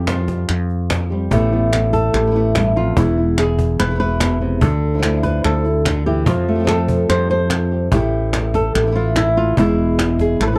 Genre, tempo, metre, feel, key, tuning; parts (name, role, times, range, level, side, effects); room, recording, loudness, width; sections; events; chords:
flamenco; 145 BPM; 4/4; straight; A minor; A4 = 442 Hz
flamenco guitar; melody; 0.0-10.6 s; E2 to C5; -21 LUFS; equal
flamenco guitar; stabs; 0.0-10.6 s; B2 to G4; -26 LUFS; equal
mellow fretless electric bass; bass; 0.0-10.6 s; E1 to F2; -22 LUFS; equal
cajon; percussion; 0.1-10.6 s; -25 LUFS; equal
palmas hand claps; percussion; 0.1-10.6 s; -27 LUFS; equal
little or no reverb; dry, close 1970s-style studio recording; -17 LUFS; mono
0.0-10.6 A section
0.0 Fsus2; 1.3 Asus2; 3.0 E; 4.6 Dmadd9; 6.3 Fadd9; 7.9 Asus2; 9.6 E